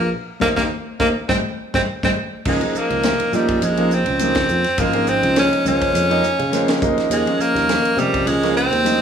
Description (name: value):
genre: electric jazz fusion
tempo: 103 BPM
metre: 4/4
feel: swing 54% on 16ths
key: Db lydian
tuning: A4 = 440 Hz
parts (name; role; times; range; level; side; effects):
- edgy tenor saxophone; melody; 0.0-9.0 s; G3 to Db4; -19 LUFS; right 1 dB; slapback echo
- clear concert grand piano; accompaniment; 0.0-9.0 s; Db3 to C5; -22 LUFS; right 1 dB; none
- sustaining fretless electric bass; bass; 0.0-9.0 s; Ab1 to Db3; -22 LUFS; equal; none
- tight funk drum kit; drums; 0.4-9.0 s; crash cymbal, hi-hat, kick drum, ride cymbal, snare drum; -26 LUFS; equal; none
- congas; percussion; 0.4-9.0 s; none; -28 LUFS; left 6 dB; none
room: light reverb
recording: small room reverb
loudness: -16 LUFS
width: side -7 dB against mid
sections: 0.0-2.5 A section; 2.5-9.0 B section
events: band accent 0.1-2.5; drum fill 1.3-2.5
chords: 0.1 Eb5; 1.3 Abmaj7; 2.5 Db6; 6.8 Eb7sus4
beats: | 0.13 0.71 1.29 1.87 | 2.45 3.04 3.62 4.20 | 4.78 5.36 5.94 6.52 | 7.10 7.68 8.27 8.85